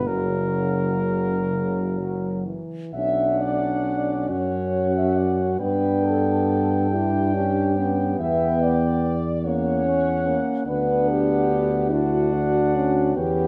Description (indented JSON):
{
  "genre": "classical, hymn-like piece for brass band",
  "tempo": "40-49 BPM (dotted quarters)",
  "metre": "6/8",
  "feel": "rubato",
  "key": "B minor",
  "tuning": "A4 = 440 Hz",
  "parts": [
    { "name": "mellow cornet", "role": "melody", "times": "0.0-13.5 s", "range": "A#4 to G5", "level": "-31 LUFS", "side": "equal", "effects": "none" },
    { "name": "dark French horn section", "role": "second line", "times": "0.0-13.5 s", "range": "F#4 to E5", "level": "-28 LUFS", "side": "equal", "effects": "none" },
    { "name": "clear euphonium", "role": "accompaniment", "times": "0.0-13.5 s", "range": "F#3 to F#4", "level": "-28 LUFS", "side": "equal", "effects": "none" },
    { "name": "clear trombone", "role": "accompaniment", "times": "0.0-13.5 s", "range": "C#3 to D4", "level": "-32 LUFS", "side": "equal", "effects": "none" },
    { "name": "warm tuba", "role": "bass", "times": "0.0-13.5 s", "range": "F#1 to G2", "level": "-28 LUFS", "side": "equal", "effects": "none" }
  ],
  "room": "moderate recital hall reverb, RT60 1.4 s",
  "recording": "none",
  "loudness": "-22 LUFS",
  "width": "mono",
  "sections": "0.0-2.9 A section; 2.9-13.5 A section",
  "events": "none",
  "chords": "0.1 F#; 2.9 Bm; 4.3 F#5; 5.6 G; 8.2 Em; 9.4 F#7/E; 10.7 Bm/D"
}